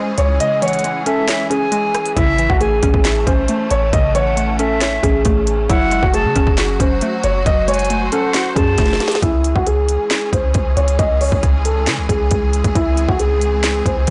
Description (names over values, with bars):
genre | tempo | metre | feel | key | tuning
hip hop, trap | 136 BPM | 4/4 | half-time | C# harmonic minor | A4 = 440 Hz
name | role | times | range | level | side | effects
dark grand piano | melody | 0.0-14.1 s | E4 to D#5 | -21 LUFS | equal | low-pass filter, slapback echo
hollow square pluck | accompaniment | 0.0-9.2 s | C#3 to E5 | -25 LUFS | equal | chorus, low-pass filter
rich symphonic string section | sustained chords | 0.0-14.1 s | E3 to B#4 | -28 LUFS | equal | none
warm 808-style bass | bass | 0.2-14.1 s | F#1 to C#3 | -21 LUFS | equal | tube saturation
trap drum kit | drums | 0.2-14.1 s | handclaps, hi-hat, kick drum, rim click, snare drum | -21 LUFS | equal | none
silver concert flute | second line | 0.6-9.2 s | E5 to A5 | -24 LUFS | equal | slapback echo
room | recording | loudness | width
little or no reverb | blown-out, overdriven recording, overdrive, nothing above 10.8 kHz | -16 LUFS | mono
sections
0.0-9.2 A section; 9.2-14.1 B section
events
kick muted 0.4-2.2; drum fill 8.8-9.2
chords
0.0 C#m; 2.2 A; 5.7 F#madd9; 9.2 C#m